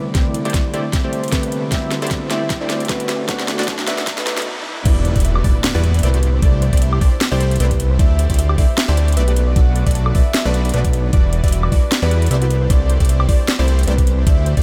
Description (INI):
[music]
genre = future bass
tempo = 153 BPM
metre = 4/4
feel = swing 55% on 16ths, half-time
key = unclear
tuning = A4 = 440 Hz
[part]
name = soft octave-layered synth lead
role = melody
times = 0.0-14.5 s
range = B4 to F#5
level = -30 LUFS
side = equal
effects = chorus, sidechain pumping, tape echo
[part]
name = tine electric piano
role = accompaniment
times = 0.0-4.9 s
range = D3 to F#4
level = -30 LUFS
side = equal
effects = medium tremolo, sidechain pumping, diffuse ambient delay
[part]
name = ethereal airy pad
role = sustained chords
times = 0.0-4.4 s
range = B4 to D6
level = -41 LUFS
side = equal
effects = none
[part]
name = supersaw stab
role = riff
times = 0.0-14.6 s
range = G3 to D5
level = -29 LUFS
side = equal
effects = sidechain pumping, low-pass filter, diffuse ambient delay
[part]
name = fat analog bass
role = bass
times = 0.0-14.6 s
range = E1 to E2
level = -20 LUFS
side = equal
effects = tube saturation, sidechain pumping, high-pass filter
[part]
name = riser and impact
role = sound effects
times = 1.0-6.4 s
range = none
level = -31 LUFS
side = equal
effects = none
[part]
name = electronic kick drum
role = drums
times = 0.1-14.6 s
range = none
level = -18 LUFS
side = equal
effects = studio reverb
[part]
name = trap drum kit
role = drums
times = 0.1-14.6 s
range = crash cymbal, hi-hat, snare drum, toms, woodblock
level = -26 LUFS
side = equal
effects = high-pass filter on snare, studio reverb, high-pass filter on hats, high-pass filter on toms, high-pass filter on cymbals, high-pass filter on perc
[part]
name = soft round pluck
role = arpeggios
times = 4.9-14.5 s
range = D4 to A5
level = -36 LUFS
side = equal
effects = none
[part]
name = unison pluck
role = arpeggios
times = 4.9-14.6 s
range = D5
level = -35 LUFS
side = equal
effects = none
[sound]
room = light reverb, digital ambience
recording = high-pass filter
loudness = -17 LUFS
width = mono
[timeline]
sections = 0.0-4.9 A section; 4.9-14.6 B section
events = build-up 0.0-4.9; drum fill 0.0-4.5, 4.5-4.9; filter sweep on supersaw synth 0.0-4.9; filter sweep 0.0-4.9; stop 4.5-4.9; drop 4.9-14.6; impact 4.9-6.4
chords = 0.0 C69; 1.7 D9sus4; 3.1 Bm7; 4.9 Em9; 6.2 C69; 8.0 D9sus4; 9.4 Bm7; 11.1 Em9; 12.5 C69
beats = | 0.15 0.54 0.93 1.33 | 1.72 2.11 2.50 2.90 | 3.29 3.68 4.07 4.46 | 4.86 5.25 5.64 6.03 | 6.42 6.82 7.21 7.60 | 7.99 8.38 8.78 9.17 | 9.56 9.95 10.35 10.74 | 11.13 11.52 11.91 12.31 | 12.70 13.09 13.48 13.88 | 14.27